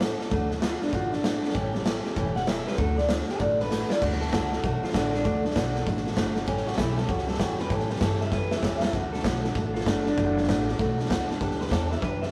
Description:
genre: rockabilly.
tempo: 195 BPM.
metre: 4/4.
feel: swing 64% on 8ths.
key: D major.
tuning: A4 = 440 Hz.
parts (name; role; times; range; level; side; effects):
electric guitar through a small old amp; melody; 0.0-12.3 s; D4 to F#5; -33 LUFS; equal; none.
picked steel-string acoustic guitar; accompaniment; 0.0-12.3 s; A2 to B4; -32 LUFS; equal; none.
upright bass; bass; 0.0-12.3 s; E1 to A2; -34 LUFS; equal; none.
raw garage drum kit; drums; 0.0-12.3 s; crash cymbal, hi-hat, kick drum, snare drum; -30 LUFS; equal; none.
room: light reverb.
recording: rough rehearsal-room recording.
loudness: -26 LUFS.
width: mono.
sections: 0.0-4.0 A section; 4.0-12.3 B section.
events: drum fill 3.7-4.0, 8.3-8.9.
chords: 0.0 D; 1.5 A7; 2.8 D; 6.5 A7; 8.9 D; 11.4 G.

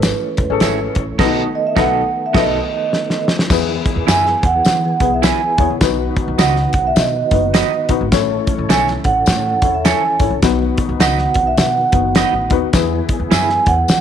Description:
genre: uptempo 1960s-style soul.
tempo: 104 BPM.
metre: 4/4.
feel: swing 61% on 8ths.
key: E major.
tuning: A4 = 441 Hz.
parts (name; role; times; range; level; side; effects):
vibraphone with soft mallets; melody; 0.0-14.0 s; B4 to G#5; -17 LUFS; right 4 dB; none.
dark upright piano; accompaniment; 0.0-13.6 s; A2 to C#5; -21 LUFS; left 14 dB; none.
tonewheel organ; sustained chords; 0.0-14.0 s; D#3 to A4; -26 LUFS; right 1 dB; slow rotary speaker, chorus vibrato.
upright bass; bass; 0.0-14.0 s; E1 to E3; -22 LUFS; equal; none.
warm soul drum kit; drums; 0.0-14.0 s; crash cymbal, hi-hat, kick drum, snare drum; -18 LUFS; equal; none.
tambourine; percussion; 0.0-14.0 s; none; -28 LUFS; left 19 dB; none.
electric guitar through a small old amp; stabs; 0.6-13.5 s; B3 to E5; -22 LUFS; right 14 dB; spring reverb.
room: little or no reverb.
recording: 1960s-style stereo with parts hard left and right.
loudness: -13 LUFS.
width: side -9 dB against mid.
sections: 0.0-3.5 A section; 3.5-14.0 B section.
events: band accent 1.2-3.5; drum fill 2.9-3.5.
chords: 0.0 Amaj7; 1.2 B7; 3.5 E; 5.8 B; 8.1 A; 10.4 B; 12.7 E.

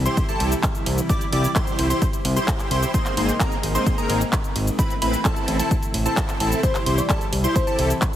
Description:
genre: EDM, festival progressive house.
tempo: 130 BPM.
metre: 4/4.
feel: straight.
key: C major.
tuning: A4 = 440 Hz.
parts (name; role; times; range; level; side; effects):
lush unison pad; sustained chords; 0.0-8.2 s; C3 to E4; -29 LUFS; equal; chorus, sidechain pumping.
fat analog bass; bass; 0.0-7.9 s; Ab1 to C2; -22 LUFS; equal; sidechain pumping.
plucky unison lead; arpeggios; 0.1-7.9 s; A5 to D6; -29 LUFS; equal; sidechain pumping, digital delay.
supersaw chords; riff; 0.1-7.9 s; Bb3 to D5; -26 LUFS; equal; analog chorus, sidechain pumping, digital delay.
big-room dance drum kit; drums; 0.1-8.2 s; cabasa, handclaps, hi-hat, ride cymbal; -28 LUFS; equal; none.
electronic kick drum; drums; 0.2-8.1 s; none; -24 LUFS; equal; none.
bell-like FM electric piano; melody; 6.6-8.0 s; C5 to D5; -27 LUFS; left 2 dB; chorus, digital delay.
room: light reverb, digital ambience.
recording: heavily compressed radio sound.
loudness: -19 LUFS.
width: side -11 dB against mid.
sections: 0.0-8.2 A section.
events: none.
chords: 0.0 C; 2.9 Abadd9; 4.8 Am; 6.6 C.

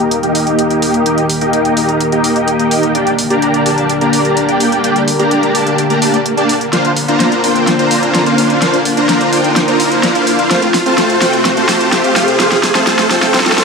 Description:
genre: EDM, festival progressive house.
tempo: 127 BPM.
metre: 4/4.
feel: straight.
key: Bb major.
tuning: A4 = 440 Hz.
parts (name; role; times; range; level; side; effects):
lush unison pad; sustained chords; 0.0-13.6 s; C3 to C5; -18 LUFS; left 1 dB; chorus, phaser.
supersaw chords; riff; 0.0-13.6 s; A3 to Bb5; -12 LUFS; equal; analog chorus, low-pass filter, tape echo.
big-room dance drum kit; drums; 0.0-13.6 s; hi-hat, snare drum; -17 LUFS; equal; overdrive.
riser; sound effects; 1.7-13.6 s; none; -20 LUFS; right 1 dB; none.
room: moderate huge ambient reverb, RT60 4.2 s.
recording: dark, warm production, high-pass filter.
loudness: -10 LUFS.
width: side -4 dB against mid.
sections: 0.0-13.6 A section.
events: build-up 0.0-13.6; filter sweep on supersaw synth 0.0-13.6; filter sweep 0.0-13.6; riser 1.7-13.6; drum fill 6.7-13.6.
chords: 0.0 Eb; 2.9 Gm; 6.7 Bbadd9; 10.5 F.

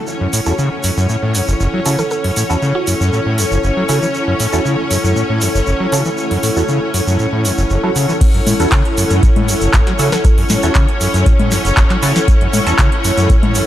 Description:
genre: acid house.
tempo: 118 BPM.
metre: 4/4.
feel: straight.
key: F# minor.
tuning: A4 = 441 Hz.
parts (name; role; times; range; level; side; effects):
rich studio string section; sustained chords; 0.0-13.7 s; C#4 to C#5; -20 LUFS; left 1 dB; sidechain pumping.
granular cloud pad; texture; 0.0-13.7 s; E4 to F#5; -21 LUFS; left 1 dB; built-in reverb, sidechain pumping.
tube shaker; percussion; 0.1-13.7 s; none; -24 LUFS; right 3 dB; none.
overdriven acid bass; riff; 0.2-13.6 s; F#1 to F#3; -17 LUFS; equal; distortion, tube saturation, analog chorus, tape echo.
booming analog drum machine; drums; 0.3-13.7 s; congas, crash cymbal, handclaps, hi-hat, snare drum; -20 LUFS; left 1 dB; none.
band-passed chord stab; stabs; 0.5-12.7 s; C#4 to A4; -24 LUFS; right 2 dB; phaser, cassette tape, tape echo.
mallet-like synth pluck; melody; 2.0-3.3, 10.1-10.3 s; F#4 to A4; -25 LUFS; right 2 dB; chorus, cassette tape, tape echo.
electronic kick drum; drums; 8.2-13.4 s; none; -12 LUFS; equal; none.
room: light reverb, digital ambience.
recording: none.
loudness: -12 LUFS.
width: side -12 dB against mid.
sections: 0.0-8.2 A section; 8.2-13.7 B section.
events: filter sweep on synth stab 0.0-8.2; drop 8.2-13.7.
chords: 0.0 F#m7.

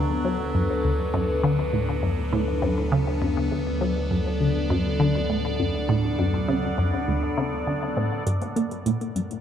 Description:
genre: ambient, sequencer-driven space music.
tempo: 101 BPM.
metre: 4/4.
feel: straight.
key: unclear.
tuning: A4 = 440 Hz.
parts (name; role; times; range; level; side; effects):
evolving wavetable pad; sustained chords; 0.0-9.4 s; F#3 to D5; -27 LUFS; left 1 dB; phaser, built-in reverb.
resonant blip pluck; riff; 0.0-9.3 s; D2 to Bb3; -24 LUFS; equal; chorus, phaser, ping-pong delay.
round analog bass; bass; 0.0-8.2 s; D2; -30 LUFS; equal; none.
electronic hi-hat and congas; percussion; 8.3-9.4 s; none; -40 LUFS; right 2 dB; overdrive, ping-pong delay.
room: wet cathedral reverb, RT60 5.0 s.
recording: in a vast, echoing space, cassette tape.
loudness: -22 LUFS.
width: side -9 dB against mid.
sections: 0.0-8.3 A section; 8.3-9.4 B section.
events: none.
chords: 0.0 D6; 8.3 Gm.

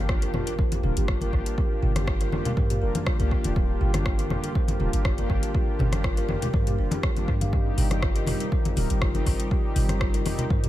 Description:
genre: afro house.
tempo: 121 BPM.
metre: 4/4.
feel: swing 53% on 16ths.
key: G minor.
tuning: A4 = 439 Hz.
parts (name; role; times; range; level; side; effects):
warm analog pad; sustained chords; 0.0-10.7 s; C3 to G4; -35 LUFS; right 1 dB; chorus, sidechain pumping.
mellow synth brass; stabs; 0.0-10.7 s; G3 to Bb4; -34 LUFS; left 4 dB; chorus, sidechain pumping, dub echo.
warm 808-style bass; bass; 0.0-10.7 s; D1 to G2; -27 LUFS; equal; sidechain pumping.
impact; sound effects; 0.3-1.6 s; none; barely audible; none; none.
kalimba; arpeggios; 0.1-10.7 s; D4 to F5; -34 LUFS; right 1 dB; sidechain pumping, tape echo.
afro-pop drum kit; drums; 0.1-10.7 s; hi-hat, rim click, toms; -33 LUFS; equal; dub echo.
electronic kick drum; drums; 0.1-10.6 s; none; -26 LUFS; equal; overdrive.
congas; percussion; 0.3-10.6 s; none; -32 LUFS; left 2 dB; dub echo.
room: little or no reverb.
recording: echo-heavy mix.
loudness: -22 LUFS.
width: side -14 dB against mid.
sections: 0.0-10.7 A section.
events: impact 0.0-1.6.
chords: 0.0 Gm7; 7.5 Cm.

